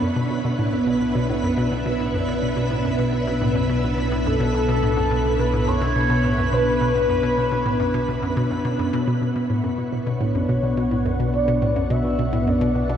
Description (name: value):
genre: ambient, sequencer-driven space music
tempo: 106 BPM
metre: 4/4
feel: straight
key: B minor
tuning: A4 = 437 Hz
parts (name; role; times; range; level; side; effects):
- string machine, full ensemble; sustained chords; 0.0-13.0 s; B3 to C#6; -23 LUFS; equal; ensemble chorus
- hollow square pluck; riff; 0.0-13.0 s; F#2 to B2; -24 LUFS; equal; chorus, analog delay
- analog drone; bass; 0.8-13.0 s; B1; -28 LUFS; equal; chorus
- twinkling granular texture; texture; 0.0-9.1 s; B4; -35 LUFS; right 1 dB; built-in reverb
- mellow horn-like synth lead; melody; 4.3-13.0 s; A4 to E5; -24 LUFS; left 1 dB; phaser, lush chorus, analog delay
room: wet huge ambient reverb, RT60 8.4 s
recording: dreamy mix soaked in reverb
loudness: -19 LUFS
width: side -9 dB against mid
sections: 0.0-9.1 A section; 9.1-13.0 B section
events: fade-in on synth texture 0.0-9.1; filter sweep on synth arpeggio sound 0.0-9.1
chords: 0.0 Bmadd9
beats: | 0.02 0.58 1.15 1.72 | 2.28 2.85 3.42 3.98 | 4.55 5.11 5.68 6.25 | 6.81 7.38 7.94 8.51 | 9.07 9.64 10.21 10.77 | 11.34 11.90 12.47